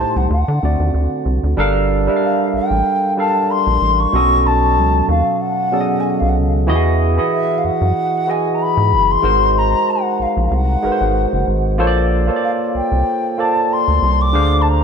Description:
R&B, neo-soul; 94 BPM; 4/4; swing 55% on 16ths; A4 = 440 Hz
baroque flute; melody; 0.0-14.8 s; E5 to D6; -18 LUFS; left 3 dB; ping-pong delay
barky tine electric piano; accompaniment; 0.0-14.8 s; A2 to F5; -18 LUFS; right 2 dB; overdrive, wide subtle chorus
rubbery square bass; bass; 0.0-14.8 s; F#1 to D3; -17 LUFS; equal
moderate plate reverb, RT60 3.6 s; dreamy mix soaked in reverb; -14 LUFS; side -6 dB against mid
0.0-1.6 A section; 1.6-14.8 B section
0.3 D7; 1.6 Gm9; 4.1 B13; 6.7 Emaj9; 9.2 Ab9; 11.8 Bbmaj7; 14.3 Dm7b5
0.29 0.93 | 1.57 2.21 2.85 3.49 | 4.12 4.76 5.40 6.04 | 6.68 7.32 7.96 8.59 | 9.23 9.87 10.51 11.15 | 11.79 12.42 13.06 13.70 | 14.34

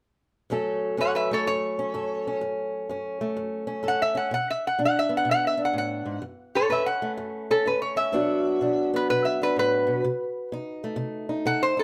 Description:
acoustic country blues, solo or duo; 126 BPM; 4/4; swing 65% on 8ths; F# minor; A4 = 440 Hz
fingerpicked old ladder-braced acoustic guitar; accompaniment; 0.5-11.8 s; F#2 to A4; -30 LUFS; equal
lap resonator guitar; melody; 1.0-11.8 s; A4 to F#5; -27 LUFS; equal; plate reverb
moderate studio ambience, RT60 0.5 s; -26 LUFS; mono
0.5-11.8 A section
resonator guitar played with a steel bar solo 0.5-11.8
0.5 F#m; 4.3 Bm; 6.2 F#m; 8.1 Bm; 10.0 Cdim7
| 0.49 0.97 1.45 1.93 | 2.40 2.88 3.36 3.84 | 4.32 4.79 5.27 5.75 | 6.22 6.70 7.18 7.65 | 8.13 8.61 9.08 9.56 | 10.03 10.51 10.98 11.46

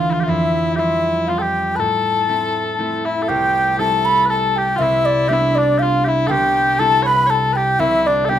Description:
celtic folk, Celtic waltz; 120 BPM; 3/4; swing 53% on 8ths; A minor, C major from 3.3 s; A4 = 439 Hz
mellow baroque flute; melody; 0.0-8.4 s; D5 to B5; -17 LUFS; equal
mellow small bagpipes; second line; 0.0-8.4 s; D4 to Db5; -21 LUFS; left 2 dB
concert harp; accompaniment; 0.0-8.4 s; C2 to F4; -21 LUFS; right 1 dB
moderate studio reverb, RT60 0.6 s; -15 LUFS; side -10 dB against mid
0.0-3.3 A section; 3.3-8.4 B section
0.3 Fsus2; 1.8 Am; 3.3 C; 4.8 G/C; 6.3 C; 7.8 G/C
| 0.28 0.78 1.28 | 1.78 2.29 2.79 | 3.29 3.79 4.29 | 4.79 5.29 5.79 | 6.29 6.79 7.29 | 7.79 8.29

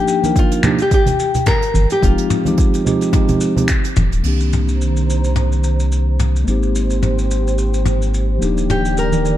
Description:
sunset chillout; 108 BPM; 4/4; swing 56% on 16ths; C minor; A4 = 441 Hz
nylon-string guitar; melody; 0.0-3.7, 8.7-9.4 s; F4 to Bb4; -19 LUFS; left 2 dB; tape echo
mellow tine electric piano; accompaniment; 0.0-9.4 s; Eb3 to Bb4; -20 LUFS; moving between left 4 dB and right 3 dB; auto-pan, tape echo
soft brush drum kit; drums; 0.1-9.4 s; crash cymbal, finger snaps, hi-hat, shaker, toms; -23 LUFS; left 2 dB
congas; percussion; 0.2-4.1, 9.1-9.2 s; -22 LUFS; right 2 dB
electronic kick drum; drums; 0.4-3.8 s; -16 LUFS; equal
round analog bass; bass; 1.7-9.4 s; Eb1 to C2; -17 LUFS; equal
airy breathy pad; sustained chords; 4.5-9.4 s; Eb3 to Bb5; -24 LUFS; right 3 dB; chorus
light reverb, small room ambience; dark, warm production; -14 LUFS; side -12 dB against mid
0.0-4.2 A section; 4.2-9.4 B section
filter sweep on analog synth pad 4.2-9.4
0.0 Ebmaj7; 2.0 Fm7; 4.2 Cm7; 6.5 Abmaj7; 8.4 Ebmaj7
0.36 0.91 1.47 | 2.02 2.58 3.14 3.69 | 4.25 4.80 5.36 5.91 | 6.47 7.03 7.58 8.14 | 8.69 9.25

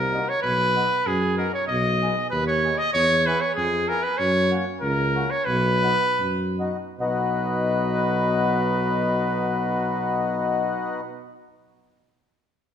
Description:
alpine folk, alpine dance band; 69-98 BPM; 2/4; rubato; B major; A4 = 440 Hz
warm trumpet; melody; 0.0-11.0 s; G#4 to D#5; -23 LUFS; right 1 dB
mellow tuba; bass; 0.0-11.0 s; B1 to F#2; -26 LUFS; equal
mellow accordion; accompaniment; 0.1-11.0 s; A#3 to G#4; -27 LUFS; left 4 dB
wet recital hall reverb, RT60 1.5 s; minimal, uncompressed stereo recording; -20 LUFS; side -8 dB against mid
0.0-7.0 A section; 7.0-10.4 B section
slowing down 4.2-7.0
0.4 B; 1.7 G#m/B; 2.9 E; 4.2 F#; 5.5 B
| 0.43 1.06 | 1.69 2.32 | 2.95 3.57 | 4.19 4.82 | 5.47 6.19 | 6.99 7.84 | 8.67 9.51

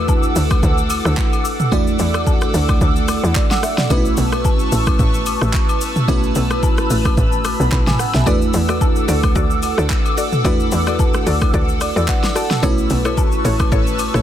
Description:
amapiano; 110 BPM; 4/4; swing 55% on 16ths; A4 = 440 Hz
crystalline FM electric piano; accompaniment; 0.0-14.2 s; A3 to B5; -22 LUFS; right 2 dB; chorus
airy breathy pad; sustained chords; 0.0-14.2 s; A4 to E6; -23 LUFS; equal; chorus, phaser, sidechain pumping
tight log drum bass; bass; 0.0-14.2 s; A1 to E2; -20 LUFS; equal
deep house drum kit; drums; 0.1-14.2 s; handclaps, hi-hat, kick drum, rim click, shaker, snare drum, toms; -18 LUFS; equal; soft clipping on snare
woodblock and agogo bells; percussion; 0.1-14.1 s; -29 LUFS; left 7 dB
mallet-like synth pluck; stabs; 8.3-14.2 s; E4 to D5; -25 LUFS; left 3 dB; chorus, digital delay
little or no reverb; dense, heavily limited modern master; -14 LUFS; side -11 dB against mid
0.0-14.2 A section
FM electric piano fill 11.5-12.6
0.0 E9sus4; 3.9 B9sus4; 8.3 E9sus4; 12.6 B9sus4
0.08 0.63 1.18 | 1.72 2.27 2.81 3.36 | 3.90 4.45 4.99 5.54 | 6.08 6.63 7.17 7.72 | 8.27 8.81 9.36 9.90 | 10.45 10.99 11.54 12.08 | 12.63 13.18 13.72

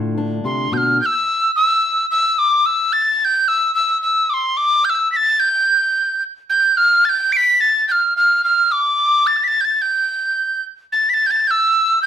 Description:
folk; 109 BPM; 4/4; straight; A4 = 440 Hz
fingerpicked steel-string acoustic guitar; accompaniment; 0.0-1.0 s; A2 to F4; -21 LUFS; left 2 dB
mellow tin whistle; melody; 0.5-12.1 s; C6 to D7; -14 LUFS; equal; slapback echo
moderate studio reverb, RT60 0.7 s; -14 LUFS; side -9 dB against mid
1.0-12.1 A section
0.0 Dm; 1.0 N.C.
0.43 | 0.99 1.54 2.09 2.64 | 3.19 3.74 4.29 4.84 | 5.40 5.95 6.50 7.05 | 7.60 8.15 8.71 9.26 | 9.81 10.37 10.92 11.47 | 12.03

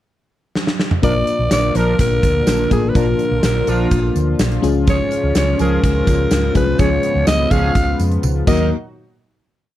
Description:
1980s-style pop; 125 BPM; 4/4; straight; A4 = 444 Hz
gated 80s drum kit; drums; 0.6-8.6 s; crash cymbal, hi-hat, kick drum, snare drum, toms; -18 LUFS; equal
breathy alto saxophone; melody; 1.0-8.7 s; F4 to F5; -20 LUFS; equal; slapback echo
FM electric piano; accompaniment; 1.0-8.7 s; Ab3 to Bb4; -22 LUFS; left 7 dB; chorus
chorused pulse-width pad; sustained chords; 1.0-8.7 s; Ab2 to Gb4; -24 LUFS; equal
analog synth brass; stabs; 1.0-8.7 s; F3 to Bb4; -22 LUFS; right 3 dB; chorus
hollow-body short-scale fingered electric bass; bass; 1.0-8.7 s; A1 to F2; -19 LUFS; equal
tambourine; percussion; 1.0-8.7 s; -36 LUFS; right 10 dB
little or no reverb; -14 LUFS; side -13 dB against mid
0.0-1.0 pickup bar; 1.0-8.7 pre-chorus; 8.7-9.8 final hit
drum fill 0.6-1.0, 8.2-8.7
0.0 N.C.; 1.0 Bb; 4.6 Db; 8.5 Ebm; 8.7 N.C.
0.07 0.55 | 1.03 1.51 1.99 2.47 | 2.95 3.43 3.91 4.39 | 4.87 5.35 5.83 6.31 | 6.79 7.27 7.75 8.23 | 8.71

